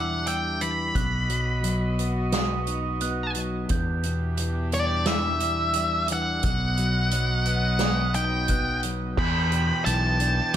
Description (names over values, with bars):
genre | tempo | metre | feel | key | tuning
post-rock | 88 BPM | 4/4 | straight | E minor | A4 = 440 Hz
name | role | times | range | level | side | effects
octave-fuzz lead guitar | melody | 0.0-10.6 s | D5 to B5 | -27 LUFS | equal | distortion, slapback echo
rich chamber string section | sustained chords | 0.0-10.6 s | E3 to G5 | -35 LUFS | right 1 dB | none
clean electric guitar | arpeggios | 0.0-10.6 s | E2 to F#4 | -31 LUFS | left 2 dB | slapback echo
glockenspiel with rubber mallets | arpeggios | 0.0-10.6 s | D6 to G6 | -35 LUFS | right 7 dB | slapback echo
fingered electric bass | bass | 0.0-10.6 s | B1 to E2 | -27 LUFS | equal | none
soft-mallet drum kit | drums | 0.3-10.6 s | crash cymbal, hi-hat, kick drum, snare drum | -28 LUFS | right 1 dB | none
room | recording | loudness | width
light reverb, small room ambience | none | -22 LUFS | side -10 dB against mid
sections
0.0-9.2 A section; 9.2-10.6 B section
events
none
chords
0.0 Em7; 0.9 B; 3.7 Em7; 6.4 B; 9.2 Em7